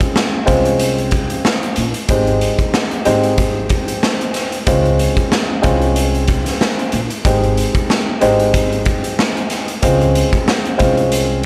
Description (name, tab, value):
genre	hip hop, boom-bap hip-hop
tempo	93 BPM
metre	4/4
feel	swing 56% on 16ths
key	unclear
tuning	A4 = 439 Hz
part	dark upright piano	accompaniment	0.0-11.5 s	Ab3 to C5	-19 LUFS	equal	cassette tape, high-pass filter, low-pass filter
part	raw garage drum kit	drums	0.0-11.5 s	hi-hat, kick drum, snare drum	-19 LUFS	equal	none
part	upright bass	bass	0.5-11.5 s	Ab1 to Db2	-22 LUFS	equal	none
room	little or no reverb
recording	none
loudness	-16 LUFS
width	mono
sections	0.0-11.5 A section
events	none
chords	0.0 Dbmaj7; 2.1 Abmaj7; 4.7 Dbmaj7; 7.3 Abmaj7; 9.8 Dbmaj7